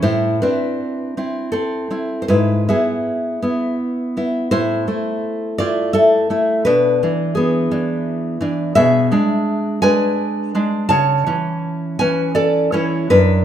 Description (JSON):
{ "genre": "romantic piece for solo classical guitar", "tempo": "73-88 BPM", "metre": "3/4", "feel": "rubato", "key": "A minor, A major from 8.8 s", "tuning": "A4 = 441 Hz", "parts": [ { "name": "nylon-string guitar", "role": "solo", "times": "0.0-13.4 s", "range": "F#2 to A5", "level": "-15 LUFS", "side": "equal", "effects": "none" } ], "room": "moderate scoring stage reverb, RT60 1.9 s", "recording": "minimal, uncompressed stereo recording", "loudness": "-16 LUFS", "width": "side -10 dB against mid", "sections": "0.0-13.4 A section", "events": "none", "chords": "0.0 Am; 2.3 E/G#; 4.5 Am; 6.7 E7/B; 10.9 A/C#", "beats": "| 0.02 0.79 1.52 | 2.29 3.06 3.80 | 4.52 5.23 5.94 | 6.67 7.37 8.05 | 8.75 9.47 10.19 | 10.91 11.63 12.36 | 13.11" }